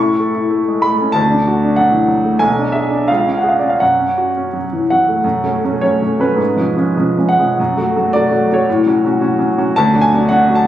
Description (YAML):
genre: classical, romantic character piece for solo piano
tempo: 79-113 BPM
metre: 2/4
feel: rubato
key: F# minor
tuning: A4 = 440 Hz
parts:
  - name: warm concert grand piano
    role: solo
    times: 0.0-10.7 s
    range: B1 to C#6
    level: -12 LUFS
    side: equal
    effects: none
room: moderate recital hall reverb, RT60 1.6 s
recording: recorded on a phone in the room, club reverb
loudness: -12 LUFS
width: side -12 dB against mid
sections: 0.0-5.2 A section; 5.2-10.7 B section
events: none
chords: 0.0 A; 1.1 D; 2.4 G#dim/B; 3.1 C#; 3.8 F#5; 5.2 F#m; 6.4 C#7/G#; 7.6 F#m; 8.7 F#m/A; 9.8 D